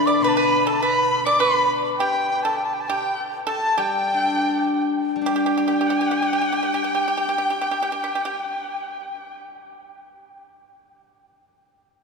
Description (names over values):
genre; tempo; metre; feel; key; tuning
chinese traditional, Chinese chamber ensemble; 70-103 BPM; 2/4; rubato; G gong mode; A4 = 440 Hz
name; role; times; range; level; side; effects
bright reedy large dizi; melody; 0.0-9.4 s; G5 to D6; -24 LUFS; right 1 dB; none
bright erhu; second line; 0.0-9.4 s; G5 to D6; -26 LUFS; left 3 dB; none
pipa; second line; 0.0-8.3 s; G4 to D5; -25 LUFS; right 4 dB; none
steel-string zither; accompaniment; 0.0-11.2 s; B2 to G4; -24 LUFS; left 3 dB; none
room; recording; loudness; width
wet cathedral reverb, RT60 5.2 s; recorded in a church or concert hall; -19 LUFS; side -4 dB against mid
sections
0.0-5.3 A section; 5.3-8.6 B section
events
slowing down 2.6-5.3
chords
none